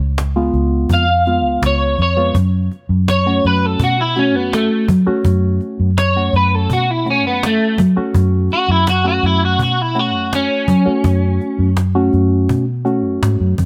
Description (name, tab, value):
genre	straight-eighth soul blues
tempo	83 BPM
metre	4/4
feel	straight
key	F# harmonic minor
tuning	A4 = 440 Hz
part	vintage muted fingered electric bass	bass	0.0-13.7 s	C#2 to F#3	-18 LUFS	equal	none
part	cajon	drums	0.2-13.7 s	none	-24 LUFS	equal	none
part	reed electric piano	accompaniment	0.4-13.5 s	G#3 to F#4	-22 LUFS	equal	phaser
part	electric guitar at the edge of break-up	melody	0.9-11.7 s	A3 to E#5	-19 LUFS	equal	ensemble chorus
room	little or no reverb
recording	none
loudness	-15 LUFS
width	mono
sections	0.0-2.3 A section; 2.3-13.7 B section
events	clean electric guitar solo 2.3-13.7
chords	0.0 C#7; 2.3 F#m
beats	0.17 0.89 1.62 | 2.35 3.07 3.80 4.52 | 5.25 5.97 6.70 7.42 | 8.15 8.87 9.60 10.32 | 11.04 11.77 12.49 13.22